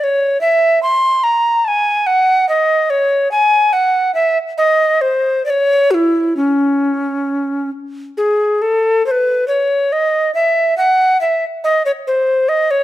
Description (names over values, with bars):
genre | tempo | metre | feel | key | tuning
classical, baroque-style fantasia for unaccompanied recorder | 65-73 BPM | 3/4 | rubato | C# minor | A4 = 441 Hz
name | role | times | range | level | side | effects
mellow tenor recorder | solo | 0.0-12.8 s | C#4 to B#5 | -12 LUFS | equal | none
room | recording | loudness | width
moderate recital hall reverb, RT60 1.6 s | close, detailed microphones | -12 LUFS | side -14 dB against mid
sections
0.0-8.2 A section; 8.2-12.8 B section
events
none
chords
none